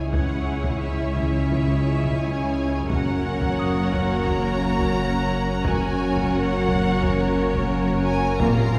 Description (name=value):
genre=cinematic, suspense film score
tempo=87 BPM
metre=4/4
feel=straight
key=unclear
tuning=A4 = 439 Hz
part: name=rich symphonic violin section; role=melody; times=0.0-8.8 s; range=E5 to A#5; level=-34 LUFS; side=equal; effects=none
part: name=clear symphonic violin section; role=second line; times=0.0-8.8 s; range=G#4 to C#5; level=-33 LUFS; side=equal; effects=none
part: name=clear symphonic viola section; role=accompaniment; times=0.0-8.8 s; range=A#3 to F#4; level=-30 LUFS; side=equal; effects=none
part: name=glass harmonica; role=sustained chords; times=0.0-8.8 s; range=G#4 to F#5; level=-35 LUFS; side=equal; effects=none
part: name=mellow French horn section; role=sustained chords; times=0.0-8.6 s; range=B#2 to E4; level=-33 LUFS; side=equal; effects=none
part: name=rich symphonic cello section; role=bass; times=0.0-8.8 s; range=C#2 to A#2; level=-30 LUFS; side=equal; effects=none
part: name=rich symphonic double bass section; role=bass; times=0.0-8.8 s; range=F#1 to C#2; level=-29 LUFS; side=equal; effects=none
part: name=deep rumbling drone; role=drone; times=0.0-8.8 s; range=F#1 to C#2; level=-33 LUFS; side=equal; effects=built-in reverb
part: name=concert harp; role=texture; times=0.0-8.8 s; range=E5 to B#6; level=-44 LUFS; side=equal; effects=none
part: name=taiko ensemble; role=drums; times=0.1-8.8 s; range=none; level=-32 LUFS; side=equal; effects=none
part: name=bright symphonic violin section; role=texture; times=2.9-8.8 s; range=C#5 to C#7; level=-42 LUFS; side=equal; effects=none
room=wet concert hall reverb, RT60 2.2 s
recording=heard from further back in the room, vinyl crackle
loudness=-22 LUFS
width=mono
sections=0.0-8.8 A section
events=none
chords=0.0 C#m; 2.9 F#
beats=| 0.13 0.82 1.50 2.19 | 2.88 3.57 4.26 4.95 | 5.64 6.33 7.02 7.71 | 8.40